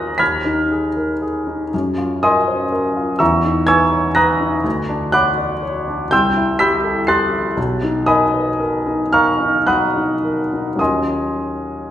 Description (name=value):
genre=classical, impressionist solo piano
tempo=36-42 BPM (dotted quarters)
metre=6/8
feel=rubato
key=unclear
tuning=A4 = 442 Hz
part: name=clear grand piano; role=solo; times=0.0-11.9 s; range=B1 to C7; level=-15 LUFS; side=equal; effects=none
room=wet recital hall reverb, RT60 1.7 s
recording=heard from further back in the room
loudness=-15 LUFS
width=side -11 dB against mid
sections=0.0-11.9 A section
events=none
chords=0.2 Abm69/Eb; 1.7 Gbmaj7; 3.2 Emaj7; 4.7 Dmaj7; 6.1 Cmaj7; 7.6 Bmaj7; 10.8 Ebm9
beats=0.20 | 1.73 3.20 | 4.65 6.11 | 7.57 9.12 | 10.79